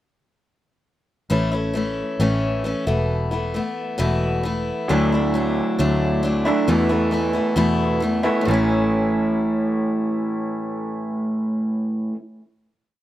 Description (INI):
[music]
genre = folk rock and heartland rock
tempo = 135 BPM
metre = 4/4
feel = straight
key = A major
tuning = A4 = 440 Hz
[part]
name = picked steel-string acoustic guitar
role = accompaniment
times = 1.3-12.2 s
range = E2 to E4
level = -24 LUFS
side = left 2 dB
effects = slapback echo
[part]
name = fingered electric bass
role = bass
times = 1.3-12.1 s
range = E1 to E2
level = -23 LUFS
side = equal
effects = none
[part]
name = electric guitar through a small old amp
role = riff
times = 4.9-12.2 s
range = E2 to E4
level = -21 LUFS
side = right 2 dB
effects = slapback echo
[sound]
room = little or no reverb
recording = recorded outdoors, with no room sound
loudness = -19 LUFS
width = side -13 dB against mid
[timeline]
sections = 1.3-8.5 verse; 8.5-12.0 final chord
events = none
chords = 1.3 A; 2.9 Esus4; 4.9 Dadd9; 6.7 Esus4; 8.5 A